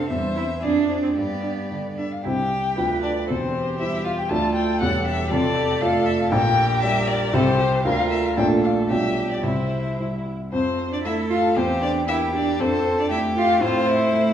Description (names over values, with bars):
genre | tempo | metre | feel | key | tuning
quick classical-period movement for piano quartet | 109-121 BPM | 2/4 | rubato | C major, F major from 6.3 s | A4 = 441 Hz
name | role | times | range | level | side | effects
rich violin | melody | 0.0-14.3 s | G4 to A5 | -25 LUFS | left 4 dB | none
rich cello | second line | 0.0-14.3 s | G3 to B4 | -28 LUFS | right 7 dB | none
warm violin | second line | 0.0-14.3 s | C4 to E5 | -27 LUFS | left 1 dB | none
warm baby grand piano | accompaniment | 0.0-14.3 s | E1 to E5 | -23 LUFS | equal | none
room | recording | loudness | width
wet recital hall reverb, RT60 1.6 s | small room reverb | -19 LUFS | side -9 dB against mid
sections
0.0-2.2 A section; 2.2-10.5 B section; 10.5-14.3 C section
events
none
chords
0.1 C/E; 0.6 Dm7b5/F; 1.2 G; 2.2 C; 2.8 Bdim/D; 3.3 C/E; 4.3 Dm; 4.8 C#dim/E; 5.3 Dm/F; 6.3 Gm/Bb; 7.3 C; 7.8 Bb/D; 8.4 Bbmaj7; 8.9 G7/B; 9.4 C; 10.5 F; 11.6 C7/E; 12.6 F; 13.6 F/A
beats
| 0.10 0.62 | 1.16 1.71 | 2.25 2.77 | 3.29 3.80 | 4.31 4.82 | 5.32 5.81 | 6.32 6.83 | 7.33 7.85 | 8.37 8.90 | 9.44 9.98 | 10.52 11.05 | 11.57 12.09 | 12.60 13.11 | 13.62 14.14